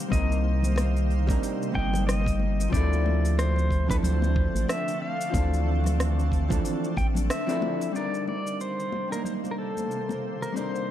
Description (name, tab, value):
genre	sunset chillout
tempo	92 BPM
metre	4/4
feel	swing 58% on 16ths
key	C dorian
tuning	A4 = 441 Hz
part	vintage hollow-body jazz guitar	accompaniment	0.0-10.9 s	E3 to Eb5	-30 LUFS	moving between left 6 dB and right 5 dB	auto-pan
part	shimmering ambient pad	sustained chords	0.0-10.9 s	C3 to C5	-34 LUFS	equal	chorus, built-in reverb
part	pedal steel guitar	melody	0.1-10.9 s	A4 to G5	-33 LUFS	equal	ping-pong delay
part	round analog bass	bass	0.1-7.3 s	G1 to D2	-24 LUFS	equal	none
part	deep house drum kit	drums	0.1-10.9 s	hi-hat, rim click, shaker	-35 LUFS	equal	small room ambience
part	electronic kick drum	drums	0.1-7.1 s	none	-28 LUFS	equal	small room ambience
part	congas	percussion	0.1-10.7 s	none	-36 LUFS	left 3 dB	none
room	light reverb, digital ambience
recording	dark, warm production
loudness	-24 LUFS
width	side -11 dB against mid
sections	0.0-7.9 A section; 7.9-10.9 B section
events	band accent 7.3-7.6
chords	0.0 Cm9; 2.7 Dm9; 7.9 Cm9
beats	| 0.12 0.77 1.42 2.08 | 2.73 3.38 4.03 4.68 | 5.34 5.99 6.64 7.29 | 7.95 8.60 9.25 9.90 | 10.55